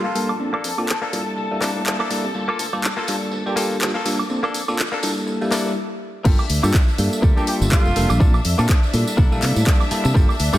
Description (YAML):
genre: filtered disco house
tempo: 123 BPM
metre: 4/4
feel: swing 57% on 16ths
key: G dorian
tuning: A4 = 441 Hz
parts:
  - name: warm horn section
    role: melody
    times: 0.0-0.5, 3.5-3.7, 7.4-8.3 s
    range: F4 to G4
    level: -28 LUFS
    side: right 2 dB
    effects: sidechain pumping, low-pass filter
  - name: rich symphonic string section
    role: sustained chords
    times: 0.0-10.6 s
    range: D4 to A5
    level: -30 LUFS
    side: left 2 dB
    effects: vintage 12-bit sampler grit, sidechain pumping, low-pass filter
  - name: direct-recorded clean electric guitar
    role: riff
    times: 0.0-10.6 s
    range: Bb3 to A4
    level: -28 LUFS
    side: left 3 dB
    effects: vintage 12-bit sampler grit, sidechain pumping, low-pass filter
  - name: tambourine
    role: percussion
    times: 0.0-10.6 s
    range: none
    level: -35 LUFS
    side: right 2 dB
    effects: sidechain pumping on perc, low-pass filter on perc
  - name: modern bright fingered electric bass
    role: bass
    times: 0.1-10.6 s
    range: F1 to C3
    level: -23 LUFS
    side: equal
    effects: sidechain pumping, high-pass filter, low-pass filter
  - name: barky tine electric piano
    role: accompaniment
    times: 0.2-10.6 s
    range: G3 to A4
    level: -24 LUFS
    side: equal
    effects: phaser, vintage 12-bit sampler grit, sidechain pumping, low-pass filter
  - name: house drum kit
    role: drums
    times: 0.2-10.6 s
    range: crash cymbal, handclaps, hi-hat, woodblock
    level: -25 LUFS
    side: right 1 dB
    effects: sidechain pumping on perc, sidechain pumping on hats, sidechain pumping on cymbals
  - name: electronic kick drum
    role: drums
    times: 6.3-10.3 s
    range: none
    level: -16 LUFS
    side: equal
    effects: none
room: light reverb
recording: none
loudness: -17 LUFS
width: side -14 dB against mid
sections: 0.0-6.3 A section; 6.3-10.6 B section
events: build-up 0.0-6.3; stop 5.8-6.3; drop 6.3-10.6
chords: 0.4 Bbmaj7; 1.4 C13; 2.4 Gm9; 4.3 Bbmaj7; 5.3 C13; 6.3 Gm9; 8.2 Bbmaj7; 9.2 C13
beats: | 0.40 0.89 1.37 1.86 | 2.35 2.84 3.33 3.81 | 4.30 4.79 5.28 5.76 | 6.25 6.74 7.23 7.72 | 8.20 8.69 9.18 9.67 | 10.15